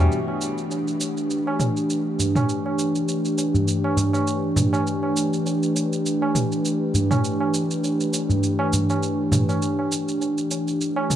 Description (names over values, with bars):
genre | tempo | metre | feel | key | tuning
organic downtempo | 101 BPM | 4/4 | swing 56% on 16ths | unclear | A4 = 440 Hz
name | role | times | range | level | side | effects
airy breathy pad | sustained chords | 0.0-11.2 s | E3 to B4 | -22 LUFS | equal | chorus
kora | arpeggios | 0.0-1.4 s | B2 to E4 | -32 LUFS | left 2 dB | digital delay
electronic shaker and toms | drums | 0.1-11.2 s | none | -27 LUFS | right 1 dB | none
tabla | percussion | 0.3-11.2 s | none | -26 LUFS | right 1 dB | none
room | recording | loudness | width
moderate huge ambient reverb, RT60 7.8 s | dark, warm production | -20 LUFS | side -11 dB against mid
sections
0.1-11.2 A section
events
filter sweep on analog synth pad 0.1-11.2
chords
0.1 G69/E